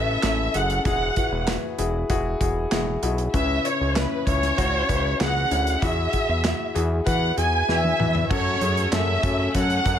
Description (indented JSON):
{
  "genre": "piano-driven pop",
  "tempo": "97 BPM",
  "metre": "4/4",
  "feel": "straight",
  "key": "unclear",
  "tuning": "A4 = 440 Hz",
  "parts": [
    { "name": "warm studio violin section", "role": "melody", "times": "0.0-10.0 s", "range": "B4 to G#5", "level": "-24 LUFS", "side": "right 1 dB", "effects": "none" },
    { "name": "warm grand piano", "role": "accompaniment", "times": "0.0-10.0 s", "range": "A2 to C#5", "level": "-27 LUFS", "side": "left 5 dB", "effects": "none" },
    { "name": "fat analog bass", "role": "bass", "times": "0.0-10.0 s", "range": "E1 to F#2", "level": "-25 LUFS", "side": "equal", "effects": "none" },
    { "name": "modern studio drum kit", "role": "drums", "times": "0.2-10.0 s", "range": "crash cymbal, handclaps, hi-hat, kick drum, snare drum, toms", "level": "-27 LUFS", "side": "right 1 dB", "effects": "none" },
    { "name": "rich studio string section", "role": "sustained chords", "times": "8.3-10.0 s", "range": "F#3 to C#4", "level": "-33 LUFS", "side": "left 1 dB", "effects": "none" }
  ],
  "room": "light reverb, small room ambience",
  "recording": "none",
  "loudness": "-20 LUFS",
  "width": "side -9 dB against mid",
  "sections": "0.0-8.3 A section; 8.3-10.0 B section",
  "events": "drum fill 7.7-8.3",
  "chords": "0.0 A; 0.9 Eadd9; 3.3 C#m7; 5.8 Eadd9; 8.3 F#m"
}